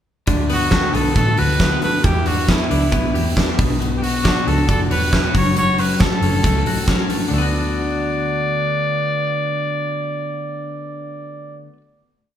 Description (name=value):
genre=jangly indie pop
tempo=137 BPM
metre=4/4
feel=straight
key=D major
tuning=A4 = 440 Hz
part: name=twelve-string electric guitar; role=arpeggios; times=0.3-11.8 s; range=B2 to C#5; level=-23 LUFS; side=left 4 dB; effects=none
part: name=vintage muted picked electric bass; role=bass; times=0.3-11.7 s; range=E1 to E2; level=-22 LUFS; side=equal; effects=none
part: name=big rock drum kit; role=drums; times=0.3-7.2 s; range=hi-hat, kick drum, snare drum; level=-18 LUFS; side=right 1 dB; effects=none
part: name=bright trumpet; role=melody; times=0.5-11.6 s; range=E4 to D5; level=-22 LUFS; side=right 1 dB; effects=none
room=wet large studio reverb, RT60 1.4 s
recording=band playing live in one room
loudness=-16 LUFS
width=side -10 dB against mid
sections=0.3-7.3 verse; 7.3-10.8 final chord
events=none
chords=0.3 D6; 2.0 Em7; 3.6 Bmadd9; 5.3 F#m; 7.3 D6